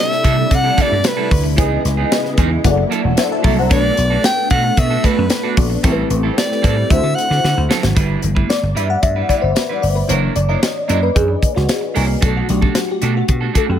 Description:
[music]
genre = polished 1980s jazz-funk pop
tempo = 113 BPM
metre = 4/4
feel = straight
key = G major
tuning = A4 = 436 Hz
[part]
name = clear soprano saxophone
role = melody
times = 0.0-7.7 s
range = B4 to G5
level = -19 LUFS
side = equal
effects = none
[part]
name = bell-like FM electric piano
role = accompaniment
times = 0.0-13.8 s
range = E3 to A#5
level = -21 LUFS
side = left 4 dB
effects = phaser, ensemble chorus
[part]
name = soft string machine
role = sustained chords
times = 0.0-8.0 s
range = C3 to D#5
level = -24 LUFS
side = equal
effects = ensemble chorus
[part]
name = clean electric guitar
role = riff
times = 0.0-13.8 s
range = E3 to B4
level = -23 LUFS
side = right 9 dB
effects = wide subtle chorus
[part]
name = tight funk drum kit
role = drums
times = 0.1-13.7 s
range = hi-hat, kick drum, snare drum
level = -18 LUFS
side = equal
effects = none
[part]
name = vintage slap bass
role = bass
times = 0.2-13.8 s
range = E1 to D3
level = -18 LUFS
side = equal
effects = none
[sound]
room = small room ambience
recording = none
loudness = -13 LUFS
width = side -9 dB against mid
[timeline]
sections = 0.0-8.0 A section; 8.0-13.8 B section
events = FM electric piano fill 2.1-3.7; drum fill 7.4-8.0; FM electric piano solo 8.0-13.8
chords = 0.0 C69; 1.6 C#m9; 2.6 F#7alt; 3.7 Bm7; 5.8 Am7; 6.9 D9; 8.0 G6; 10.1 F#7b13; 12.2 Bm7

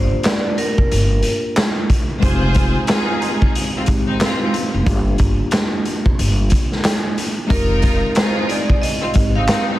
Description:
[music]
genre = hip hop, boom-bap hip-hop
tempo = 91 BPM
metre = 4/4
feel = swing 61% on 16ths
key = F dorian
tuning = A4 = 440 Hz
[part]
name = vibraphone with hard mallets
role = melody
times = 0.0-1.5, 7.5-9.7 s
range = Bb4 to F5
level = -23 LUFS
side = right 1 dB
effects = high-pass filter, low-pass filter, digital delay
[part]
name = tine electric piano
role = accompaniment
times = 0.0-9.8 s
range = Ab3 to G4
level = -24 LUFS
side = left 1 dB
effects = overdrive, fast stereo tremolo, cassette tape, high-pass filter, low-pass filter
[part]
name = upright bass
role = bass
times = 0.0-9.5 s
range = F1 to Ab1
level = -20 LUFS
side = equal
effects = none
[part]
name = raw garage drum kit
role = drums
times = 0.2-9.7 s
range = handclaps, hi-hat, kick drum, snare drum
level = -17 LUFS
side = equal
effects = none
[part]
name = clear studio string section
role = stabs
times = 2.2-9.7 s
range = Ab3 to C5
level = -23 LUFS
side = equal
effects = high-pass filter, low-pass filter, digital delay
[sound]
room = small room ambience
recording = dense, heavily limited modern master, vinyl crackle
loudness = -15 LUFS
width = side -15 dB against mid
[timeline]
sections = 0.0-9.8 A section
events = none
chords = 0.0 Gm7; 2.2 Fm7; 4.9 Gm7; 7.5 Fm7

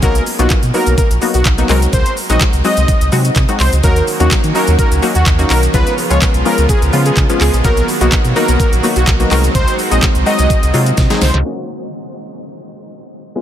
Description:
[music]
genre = dance-pop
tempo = 126 BPM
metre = 4/4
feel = straight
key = Eb minor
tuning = A4 = 440 Hz
[part]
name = fat analog lead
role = melody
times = 0.0-11.3 s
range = F#4 to Eb5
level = -19 LUFS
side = equal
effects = chorus, ping-pong delay
[part]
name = analog pluck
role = accompaniment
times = 0.0-13.4 s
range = F3 to Ab4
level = -18 LUFS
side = left 2 dB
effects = chorus, sidechain pumping
[part]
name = sub bass with octave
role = bass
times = 0.0-11.4 s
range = A#1 to Eb3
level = -14 LUFS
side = equal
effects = sidechain pumping
[part]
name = pop drum kit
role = drums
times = 0.0-11.4 s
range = handclaps, hi-hat, kick drum, shaker, snare drum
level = -15 LUFS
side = equal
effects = none
[part]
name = soft supersaw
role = sustained chords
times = 3.8-11.4 s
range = Db3 to Gb4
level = -21 LUFS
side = right 1 dB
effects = sidechain pumping
[sound]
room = light reverb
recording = low-pass filter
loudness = -10 LUFS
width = side -10 dB against mid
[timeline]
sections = 0.0-11.5 A section; 11.5-13.4 B section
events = drop 0.0-11.5; drum fill 11.0-11.5; filter sweep 11.5-13.4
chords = 0.0 Bmaj7; 1.7 Ab7; 3.8 Ebm7; 5.7 Db7; 7.6 Bmaj7; 9.3 Ab7; 11.5 Ebm7

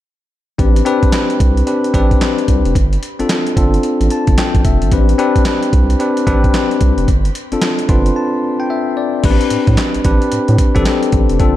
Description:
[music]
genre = R&B, new jack swing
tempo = 111 BPM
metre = 4/4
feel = swing 63% on 16ths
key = A minor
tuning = A4 = 439 Hz
[part]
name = bell-like tine electric piano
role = accompaniment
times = 0.6-11.6 s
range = B3 to C6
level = -15 LUFS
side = moving between left 6 dB and right 1 dB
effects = auto-pan, shimmer reverb
[part]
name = round analog bass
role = bass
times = 0.6-11.5 s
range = F1 to A2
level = -15 LUFS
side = right 1 dB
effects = none
[part]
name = boom bap sampler-style drum kit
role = drums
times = 0.6-11.6 s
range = crash cymbal, handclaps, hi-hat, kick drum, snare drum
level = -15 LUFS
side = equal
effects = none
[sound]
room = light reverb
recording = dark, warm production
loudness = -12 LUFS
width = side -13 dB against mid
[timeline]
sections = 0.6-9.2 A section; 9.2-11.6 B section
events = tine electric piano fill 3.8-4.9, 7.6-9.2; break 8.2-9.2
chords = 0.6 Am11; 2.8 G9sus4; 4.9 Am11; 7.1 G9sus4; 9.2 Am11

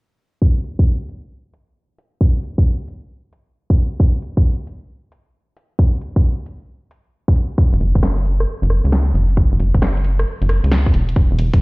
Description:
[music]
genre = UK garage, two-step garage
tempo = 134 BPM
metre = 4/4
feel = swing 67% on 16ths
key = unclear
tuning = A4 = 440 Hz
[part]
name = electronic kick drum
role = drums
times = 0.4-11.6 s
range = none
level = -14 LUFS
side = equal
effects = none
[part]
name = house drum kit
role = drums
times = 0.6-11.6 s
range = hi-hat, rim click, snare drum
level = -24 LUFS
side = equal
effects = none
[part]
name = rubbery square bass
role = bass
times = 7.7-11.6 s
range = E1 to C#2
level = -16 LUFS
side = equal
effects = sidechain pumping
[sound]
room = digital ambience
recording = played on a big sound system in a bare room, stone room reverb, low-pass filter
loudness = -15 LUFS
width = side -27 dB against mid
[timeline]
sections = 0.4-11.6 A section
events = filter sweep 0.4-11.6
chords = none

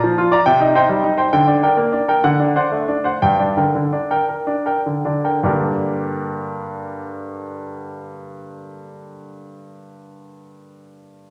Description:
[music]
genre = classical, baroque-style suite movement for grand piano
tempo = 51-70 BPM (dotted quarters)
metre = 6/8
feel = rubato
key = G minor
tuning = A4 = 440 Hz
[part]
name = clear grand piano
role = solo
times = 0.0-11.3 s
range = G2 to Bb5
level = -19 LUFS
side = equal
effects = none
[sound]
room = wet recital hall reverb, RT60 1.4 s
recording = none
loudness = -18 LUFS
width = mono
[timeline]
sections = 0.0-5.4 A section; 5.4-9.9 B section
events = slowing down 0.5-5.4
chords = 0.5 Cm; 1.3 Gm/D; 2.2 D7; 3.2 Gm

